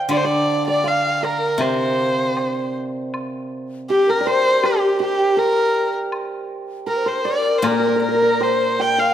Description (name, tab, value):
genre	chinese traditional, Chinese chamber ensemble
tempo	80 BPM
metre	2/4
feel	rubato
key	C shang mode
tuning	A4 = 440 Hz
part	hammered dulcimer	second line	0.0-9.1 s	G4 to G5	-23 LUFS	right 4 dB	none
part	rich erhu	melody	0.1-9.1 s	G4 to G5	-20 LUFS	equal	none
part	steel-string zither	accompaniment	0.1-3.9, 7.6-9.1 s	Bb2 to D3	-23 LUFS	left 2 dB	none
part	woodblock	percussion	0.1-8.6 s	none	-31 LUFS	left 1 dB	none
part	mellow xiao	second line	3.9-9.1 s	G4 to G5	-22 LUFS	left 5 dB	none
room	moderate scoring stage reverb, RT60 1.6 s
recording	none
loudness	-17 LUFS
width	side -10 dB against mid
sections	0.0-3.1 A section; 3.1-9.1 B section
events	none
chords	none